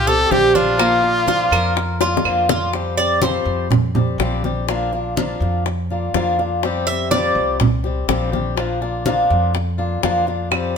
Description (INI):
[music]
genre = latin, Cuban son and guajira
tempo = 123 BPM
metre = 4/4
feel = straight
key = unclear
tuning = A4 = 440 Hz
[part]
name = clear trumpet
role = melody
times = 0.0-2.3 s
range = F4 to A4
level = -18 LUFS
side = equal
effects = none
[part]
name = Cuban tres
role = arpeggios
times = 0.0-3.7, 6.9-7.6 s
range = Bb3 to E5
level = -20 LUFS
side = right 3 dB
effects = none
[part]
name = upright bass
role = bass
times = 0.0-10.8 s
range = Bb1 to F2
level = -23 LUFS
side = equal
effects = none
[part]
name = fingerpicked swing-style acoustic guitar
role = accompaniment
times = 0.1-10.8 s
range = F3 to G4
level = -21 LUFS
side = left 3 dB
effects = none
[part]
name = bongos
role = percussion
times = 0.1-10.8 s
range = none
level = -24 LUFS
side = left 6 dB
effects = none
[part]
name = congas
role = percussion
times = 0.1-10.8 s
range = none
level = -22 LUFS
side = right 2 dB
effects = none
[part]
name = claves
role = percussion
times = 0.8-2.5, 10.5-10.8 s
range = none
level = -24 LUFS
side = right 9 dB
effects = none
[sound]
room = moderate stone room reverb, RT60 1.1 s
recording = band playing live in one room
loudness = -16 LUFS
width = side -6 dB against mid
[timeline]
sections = 0.0-2.7 A section; 2.7-10.8 B section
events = drum fill 2.0-2.7; Cuban tres solo 2.7-10.8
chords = 0.0 Fsus2; 0.8 Bb; 2.7 Fsus2; 4.7 Bb; 6.6 Fsus2; 8.6 Bb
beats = 0.31 | 0.80 1.28 1.77 2.25 | 2.74 3.23 3.71 4.20 | 4.69 5.17 5.66 6.14 | 6.63 7.12 7.60 8.09 | 8.58 9.06 9.55 10.03 | 10.52